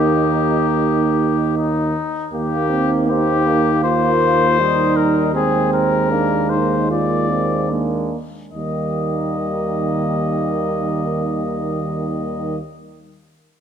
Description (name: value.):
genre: classical, brass quintet.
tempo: 71-80 BPM.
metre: 4/4.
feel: straight.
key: Eb major.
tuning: A4 = 440 Hz.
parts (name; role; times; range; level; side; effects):
warm trumpet; melody; 0.0-12.6 s; Eb4 to Eb5; -21 LUFS; left 6 dB; none.
mellow flugelhorn; second line; 0.0-12.6 s; Ab3 to Eb4; -25 LUFS; right 7 dB; none.
clear euphonium; accompaniment; 0.0-12.6 s; Eb3 to Eb4; -24 LUFS; right 5 dB; none.
mellow French horn; accompaniment; 0.0-12.6 s; G3 to F4; -24 LUFS; left 2 dB; none.
warm tuba; bass; 0.0-12.6 s; Eb2; -23 LUFS; right 3 dB; none.
room: wet recital hall reverb, RT60 1.5 s.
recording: none.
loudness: -16 LUFS.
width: side -8 dB against mid.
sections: 0.0-2.3 A section; 2.3-8.5 B section; 8.5-11.8 C section.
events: slowing down 0.8-8.5.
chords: 0.0 Eb; 5.3 Bb7/Eb; 8.5 Eb.